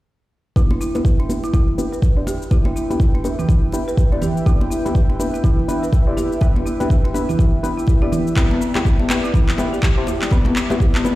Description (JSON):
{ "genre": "afro house", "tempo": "123 BPM", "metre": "4/4", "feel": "swing 59% on 16ths", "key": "E minor", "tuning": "A4 = 441 Hz", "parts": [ { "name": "warm analog pad", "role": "sustained chords", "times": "0.8-11.2 s", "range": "E4 to G5", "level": "-29 LUFS", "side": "equal", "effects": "chorus, sidechain pumping" }, { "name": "folk marimba with medium mallets", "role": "arpeggios", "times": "0.6-11.0 s", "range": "B3 to B4", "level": "-26 LUFS", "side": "equal", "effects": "sidechain pumping, low-pass filter, tape echo" }, { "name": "deep mellow chord stab", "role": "stabs", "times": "0.6-11.2 s", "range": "B3 to D5", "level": "-25 LUFS", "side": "left 1 dB", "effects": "chorus, sidechain pumping, tape echo" }, { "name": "electronic kick drum", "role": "drums", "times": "0.6-10.9 s", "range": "none", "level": "-16 LUFS", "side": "equal", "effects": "small room ambience" }, { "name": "electronic shaker and handclaps", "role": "drums", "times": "0.6-11.2 s", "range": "none", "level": "-28 LUFS", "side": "equal", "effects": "small room ambience" }, { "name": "congas", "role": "percussion", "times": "0.6-11.2 s", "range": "none", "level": "-26 LUFS", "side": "right 1 dB", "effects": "none" }, { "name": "bongos", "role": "percussion", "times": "8.5-11.2 s", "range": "none", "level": "-30 LUFS", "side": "left 4 dB", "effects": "none" } ], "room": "light reverb, studio ambience", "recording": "played on a big sound system in a bare room, large studio reverb", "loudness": "-15 LUFS", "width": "side -17 dB against mid", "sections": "0.6-11.2 A section", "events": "filter sweep on synth stab 0.6-11.2", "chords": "0.6 Em7; 8.4 Cmaj7", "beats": "| 0.56 1.05 1.54 2.02 | 2.51 3.00 3.49 3.98 | 4.46 4.95 5.44 5.93 | 6.41 6.90 7.39 7.88 | 8.37 8.85 9.34 9.83 | 10.32 10.80" }